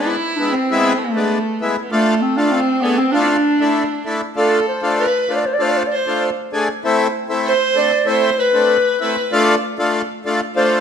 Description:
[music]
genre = klezmer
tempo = 97 BPM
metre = 2/4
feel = straight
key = D dorian sharp4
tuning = A4 = 440 Hz
[part]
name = dark clarinet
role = melody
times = 0.0-10.8 s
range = A3 to D5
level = -18 LUFS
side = equal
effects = none
[part]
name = clear violin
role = second line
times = 0.0-10.8 s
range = G#3 to C5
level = -22 LUFS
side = right 6 dB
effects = none
[part]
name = accordion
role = accompaniment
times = 0.0-10.8 s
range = G#3 to G#4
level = -18 LUFS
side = left 2 dB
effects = none
[sound]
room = moderate recital hall reverb, RT60 1.6 s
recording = minimal, uncompressed stereo recording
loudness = -15 LUFS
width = side -7 dB against mid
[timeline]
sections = 0.0-4.4 A section; 4.4-10.8 B section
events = clarinet solo 4.4-10.8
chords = 0.0 E; 1.9 Dm; 6.8 Am; 9.3 Dm

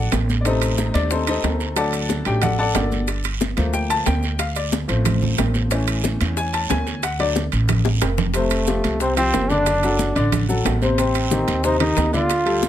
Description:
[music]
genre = latin, salsa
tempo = 182 BPM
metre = 4/4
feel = straight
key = unclear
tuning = A4 = 440 Hz
[part]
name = bright upright piano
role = accompaniment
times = 0.0-12.7 s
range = C3 to A5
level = -22 LUFS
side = left 3 dB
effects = none
[part]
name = upright bass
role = bass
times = 0.0-12.7 s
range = F1 to E2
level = -22 LUFS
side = right 1 dB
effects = none
[part]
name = bongos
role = percussion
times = 0.1-12.7 s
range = none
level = -29 LUFS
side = left 9 dB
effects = none
[part]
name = congas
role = percussion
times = 0.1-12.7 s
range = none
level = -26 LUFS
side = right 1 dB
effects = none
[part]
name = guiro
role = percussion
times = 0.1-12.7 s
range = none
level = -33 LUFS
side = right 7 dB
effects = none
[part]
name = maracas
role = percussion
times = 0.1-12.7 s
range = none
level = -33 LUFS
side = right 7 dB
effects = none
[part]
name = timbales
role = percussion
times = 0.1-12.7 s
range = none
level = -29 LUFS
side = right 9 dB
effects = none
[part]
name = bright trombone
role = melody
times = 8.4-12.7 s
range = A3 to F4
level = -21 LUFS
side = right 1 dB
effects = none
[sound]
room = light reverb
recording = close, detailed microphones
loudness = -18 LUFS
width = side -11 dB against mid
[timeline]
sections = 0.0-8.3 A section; 8.3-12.7 B section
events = upright piano solo 0.0-8.3; drum fill 7.9-8.3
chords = 0.5 Adim; 1.8 D; 3.1 Gm7; 4.4 Dm7; 5.7 A; 7.0 D; 8.3 Fadd9; 9.7 D/F#; 11.0 Am7b5

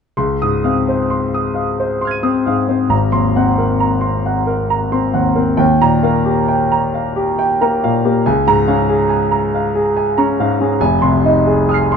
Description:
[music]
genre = classical, impressionist solo piano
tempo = 62-71 BPM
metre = 3/4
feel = rubato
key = Db major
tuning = A4 = 440 Hz
[part]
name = clear concert grand piano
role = solo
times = 0.2-12.0 s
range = F1 to Eb7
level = -13 LUFS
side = equal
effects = none
[sound]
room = light reverb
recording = dark, warm production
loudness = -13 LUFS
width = side -6 dB against mid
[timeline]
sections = 0.2-12.0 A section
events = none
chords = 0.2 Dbmaj9; 2.9 Ab9; 5.6 Ebadd9; 8.2 Db6; 10.8 Fm7

